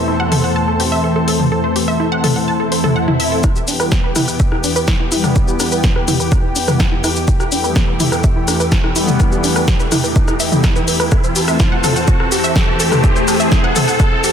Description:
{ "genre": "melodic techno", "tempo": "125 BPM", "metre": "4/4", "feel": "straight", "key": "E minor", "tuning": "A4 = 440 Hz", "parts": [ { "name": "lush unison pad", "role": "sustained chords", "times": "0.0-14.3 s", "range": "E2 to C5", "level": "-20 LUFS", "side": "equal", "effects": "chorus, sidechain pumping" }, { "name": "wide unison pluck", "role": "arpeggios", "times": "0.0-14.3 s", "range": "B3 to A5", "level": "-21 LUFS", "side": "right 1 dB", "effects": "sidechain pumping, dub echo" }, { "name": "brassy analog pad", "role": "stabs", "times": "0.0-13.5 s", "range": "E3 to C4", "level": "-21 LUFS", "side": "left 2 dB", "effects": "lush chorus, sidechain pumping, dub echo" }, { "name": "analog drone", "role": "drone", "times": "0.0-3.5 s", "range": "E2 to B2", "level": "-31 LUFS", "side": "left 2 dB", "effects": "none" }, { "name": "punchy analog drum machine", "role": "drums", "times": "0.3-14.3 s", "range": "hi-hat, rim click, shaker, snare drum, toms", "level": "-18 LUFS", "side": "left 1 dB", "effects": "none" }, { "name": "swell and riser", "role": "sound effects", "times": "2.7-14.3 s", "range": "none", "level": "-25 LUFS", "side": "equal", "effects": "none" }, { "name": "electronic kick drum", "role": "drums", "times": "3.4-14.1 s", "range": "none", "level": "-14 LUFS", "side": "equal", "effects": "none" } ], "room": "light reverb", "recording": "dense, heavily limited modern master", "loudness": "-12 LUFS", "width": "side -8 dB against mid", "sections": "0.0-3.4 A section; 3.4-14.3 B section", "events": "swell 2.7-3.4; build-up 3.4-14.3; riser 3.4-14.3; filter sweep on synth pluck 3.4-14.3", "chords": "0.0 Am/E; 3.4 Em; 11.1 Am/E" }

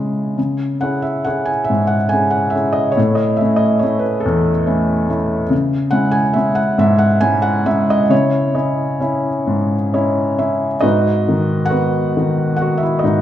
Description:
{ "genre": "classical, lyrical solo piano", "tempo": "44-48 BPM (dotted quarters)", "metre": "6/8", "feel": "rubato", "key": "C# minor", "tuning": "A4 = 440 Hz", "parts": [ { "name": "felt-muted upright piano", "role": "solo", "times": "0.0-13.2 s", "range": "E2 to G#5", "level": "-14 LUFS", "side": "equal", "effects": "none" } ], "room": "wet recital hall reverb, RT60 1.7 s", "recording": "none", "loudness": "-14 LUFS", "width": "side -11 dB against mid", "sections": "0.4-10.8 A section; 10.8-13.2 B section", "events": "felt piano fill 9.5-10.8", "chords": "0.4 C#m; 3.0 A; 5.5 C#m; 8.1 C#madd9; 10.8 G#m7" }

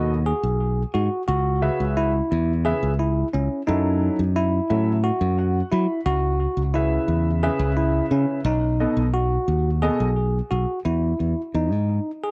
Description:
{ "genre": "progressive instrumental, progressive", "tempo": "176 BPM (eighths)", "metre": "7/8", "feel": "straight", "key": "E major", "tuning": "A4 = 439 Hz", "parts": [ { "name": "warm baby grand piano", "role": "accompaniment", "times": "0.0-10.1 s", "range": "B2 to B5", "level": "-29 LUFS", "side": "equal", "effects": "none" }, { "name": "bell-like tine electric piano", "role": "arpeggios", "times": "0.0-12.3 s", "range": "C#4 to G#4", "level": "-27 LUFS", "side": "equal", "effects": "tape echo" }, { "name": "modern bright fingered electric bass", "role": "bass", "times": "0.0-12.0 s", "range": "B1 to F#3", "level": "-24 LUFS", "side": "equal", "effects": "none" } ], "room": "little or no reverb", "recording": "home recording on cassette", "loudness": "-22 LUFS", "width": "mono", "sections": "0.0-10.9 A section; 10.9-12.3 B section", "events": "grand piano fill 5.0-6.1", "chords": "0.0 B7; 1.3 C#m7; 3.7 F#m7; 6.1 C#m7; 8.5 B7; 10.9 Emaj7" }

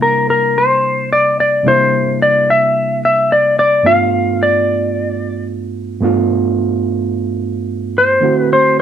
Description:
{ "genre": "blues", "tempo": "110 BPM", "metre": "4/4", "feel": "swing 55% on 16ths", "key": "G mixolydian", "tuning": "A4 = 443 Hz", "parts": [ { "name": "clean lap steel guitar", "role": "melody", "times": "0.0-8.8 s", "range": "Bb4 to F5", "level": "-12 LUFS", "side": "left 1 dB", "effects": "none" }, { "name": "overdriven reed electric piano", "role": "accompaniment", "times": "0.0-8.8 s", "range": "G2 to F#4", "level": "-17 LUFS", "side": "right 3 dB", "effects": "none" } ], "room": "moderate studio reverb, RT60 0.7 s", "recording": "band playing live in one room", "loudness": "-12 LUFS", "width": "side -9 dB against mid", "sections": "0.0-8.8 A section", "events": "none", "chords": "0.0 C9; 3.8 G9; 8.2 D9" }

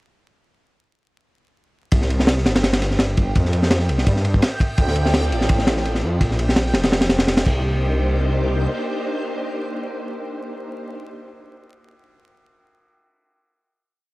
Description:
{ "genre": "drum and bass, jungle", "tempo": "168 BPM", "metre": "4/4", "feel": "straight", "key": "unclear", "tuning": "A4 = 441 Hz", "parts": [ { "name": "detuned saw bass", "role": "bass", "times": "1.9-8.7 s", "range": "F1 to G2", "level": "-20 LUFS", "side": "equal", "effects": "tube saturation" }, { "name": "crunchy breakbeat drum kit", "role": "drums", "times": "1.9-7.5 s", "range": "crash cymbal, kick drum, ride cymbal, snare drum", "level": "-19 LUFS", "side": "equal", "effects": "none" }, { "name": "backwards swelling texture", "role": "texture", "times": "2.6-7.6 s", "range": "G5", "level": "-32 LUFS", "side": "right 2 dB", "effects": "built-in reverb" }, { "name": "soft string machine", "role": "sustained chords", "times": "4.8-11.0 s", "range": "Bb3 to D5", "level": "-27 LUFS", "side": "equal", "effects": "ensemble chorus" } ], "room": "studio reverb", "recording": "dry, gritty hardware recording, vinyl crackle", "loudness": "-17 LUFS", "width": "side -21 dB against mid", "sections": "1.9-7.6 drop; 7.6-10.5 final hit", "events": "drop 1.9-7.6", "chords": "1.9 C5; 3.4 Fsus2; 4.8 Dm9; 6.2 Bb5; 7.5 Cm9" }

